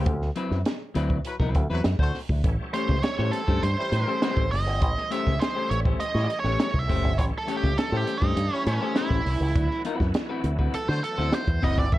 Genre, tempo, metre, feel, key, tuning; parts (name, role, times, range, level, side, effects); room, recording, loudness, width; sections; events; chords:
funk; 101 BPM; 4/4; straight; A mixolydian; A4 = 440 Hz
semi-hollow electric guitar; accompaniment; 0.0-11.8 s; F#3 to C#5; -30 LUFS; left 4 dB
fingered electric bass with an envelope filter; bass; 0.0-12.0 s; F#1 to D3; -26 LUFS; equal
compact cocktail drum kit; drums; 0.1-12.0 s; hi-hat, kick drum, snare drum; -26 LUFS; equal
warm horn section; second line; 1.3-11.0 s; F#3 to C#5; -35 LUFS; left 2 dB; analog delay
bright tonewheel organ; sustained chords; 2.4-12.0 s; E3 to C#4; -38 LUFS; equal; slow rotary speaker, chorus vibrato
nasal lead guitar with a parked wah; melody; 2.7-12.0 s; C#4 to E5; -29 LUFS; right 3 dB; overdrive, analog delay
light reverb; cassette tape; -22 LUFS; side -16 dB against mid
0.0-2.4 A section; 2.4-12.0 B section
band accent 0.1-2.4; lead electric guitar solo 2.4-12.0
0.1 D13; 2.4 A7#9; 9.6 D13